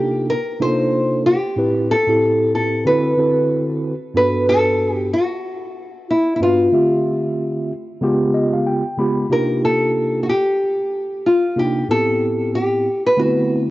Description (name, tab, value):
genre	hip hop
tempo	93 BPM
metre	4/4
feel	swing 59% on 16ths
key	G major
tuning	A4 = 440 Hz
part	nylon-string guitar	melody	0.0-13.7 s	E4 to C5	-17 LUFS	left 1 dB	cassette tape
part	mellow tine electric piano	accompaniment	0.0-13.7 s	G2 to B5	-19 LUFS	right 1 dB	medium stereo tremolo, cassette tape
room	moderate lush hall reverb, RT60 3.1 s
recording	home recording on cassette, nothing above 7.5 kHz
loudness	-16 LUFS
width	side -17 dB against mid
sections	0.0-4.2 A section; 4.2-13.7 B section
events	tine electric piano fill 8.0-9.3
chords	0.0 Cm11; 1.6 Am9; 2.9 D13; 4.2 Gmaj9; 6.7 Dm11; 8.0 C#7#11; 9.3 Cm11; 11.9 Am9; 13.2 D13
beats	0.28 0.93 | 1.57 2.22 2.86 3.51 | 4.15 4.80 5.44 6.09 | 6.73 7.38 8.02 8.67 | 9.31 9.96 10.60 11.25 | 11.89 12.54 13.18